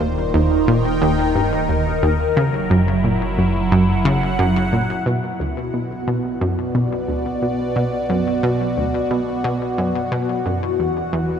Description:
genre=ambient, sequencer-driven space music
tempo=89 BPM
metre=4/4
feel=straight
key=B minor from 5.1 s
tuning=A4 = 440 Hz
part: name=phased analog pad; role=sustained chords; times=0.0-11.4 s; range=B2 to G5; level=-20 LUFS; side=equal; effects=phaser, chorus
part: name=analog pluck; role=riff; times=0.0-11.4 s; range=D2 to C#3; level=-20 LUFS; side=equal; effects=chorus, ping-pong delay
part: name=warm sub bass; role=bass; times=0.0-11.4 s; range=Eb1 to B1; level=-31 LUFS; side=equal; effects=none
part: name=bubbling stepped-filter texture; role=texture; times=5.3-11.4 s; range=F#4 to F#5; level=-31 LUFS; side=right 1 dB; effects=chorus, built-in reverb
room=wet cathedral reverb, RT60 6.3 s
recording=in a vast, echoing space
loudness=-17 LUFS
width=side -8 dB against mid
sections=0.0-5.1 A section; 5.1-11.4 B section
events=filter sweep on synth arpeggio sound 0.0-5.1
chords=0.0 Eb; 2.4 F#7; 5.1 Bm; 10.5 Esus2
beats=0.34 1.02 1.69 | 2.37 3.04 3.71 4.39 | 5.06 5.74 6.41 7.08 | 7.76 8.43 9.11 9.78 | 10.46 11.13

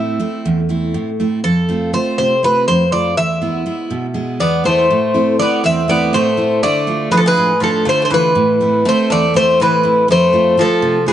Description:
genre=greek folk, Greek bouzouki band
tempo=243 BPM (eighths)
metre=7/8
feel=straight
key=unclear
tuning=A4 = 440 Hz
part: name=Greek bouzouki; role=melody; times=0.0-11.1 s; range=G#4 to E5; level=-14 LUFS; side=left 1 dB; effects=none
part: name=picked steel-string acoustic guitar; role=accompaniment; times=0.0-11.1 s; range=E2 to F4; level=-17 LUFS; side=right 2 dB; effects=none
part: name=Greek bouzouki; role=second line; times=4.4-11.1 s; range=E3 to C4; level=-20 LUFS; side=equal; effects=none
room=light reverb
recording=dark, warm production, nothing above 10.3 kHz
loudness=-12 LUFS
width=side -11 dB against mid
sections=0.0-4.9 A section; 4.9-11.1 B section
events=none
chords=0.0 Am; 1.4 F; 3.2 E; 4.9 Am; 6.6 Dm; 8.4 Am; 10.1 F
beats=0.20 0.45 0.69 0.94 1.19 | 1.44 1.68 1.93 2.18 2.43 2.67 2.92 | 3.17 3.42 3.66 3.91 4.16 4.41 4.65 | 4.90 5.15 5.39 5.64 5.89 6.13 6.38 | 6.63 6.87 7.12 7.37 7.62 7.86 8.11 | 8.36 8.60 8.85 9.10 9.34 9.59 9.83 | 10.08 10.33 10.57 10.82 11.07

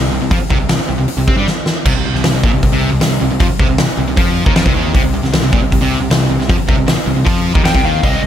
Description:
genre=hard rock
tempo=155 BPM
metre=4/4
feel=straight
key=C minor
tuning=A4 = 440 Hz
part: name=distorted electric guitar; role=riff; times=0.0-8.3 s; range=Bb2 to C4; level=-20 LUFS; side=right 10 dB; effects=distortion
part: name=sludgy distorted guitar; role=riff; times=0.0-8.3 s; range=Bb2 to C4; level=-19 LUFS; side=left 8 dB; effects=overdrive
part: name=modern bright picked electric bass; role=bass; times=0.0-8.3 s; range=Bb1 to C3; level=-18 LUFS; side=equal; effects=none
part: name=huge arena drum kit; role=drums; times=0.3-8.1 s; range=crash cymbal, hi-hat, kick drum, snare drum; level=-14 LUFS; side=equal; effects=none
part: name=lead guitar through a small cranked amp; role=melody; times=7.7-8.3 s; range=Eb5 to G5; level=-17 LUFS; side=left 2 dB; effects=overdrive
room=small room reverb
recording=none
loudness=-11 LUFS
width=side -10 dB against mid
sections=0.0-8.0 A section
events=drum fill 1.5-1.9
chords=0.0 Cm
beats=| 0.31 0.69 1.08 1.47 | 1.85 2.24 2.63 3.01 | 3.40 3.79 4.17 4.56 | 4.94 5.33 5.71 6.10 | 6.49 6.87 7.26 7.64 | 8.03

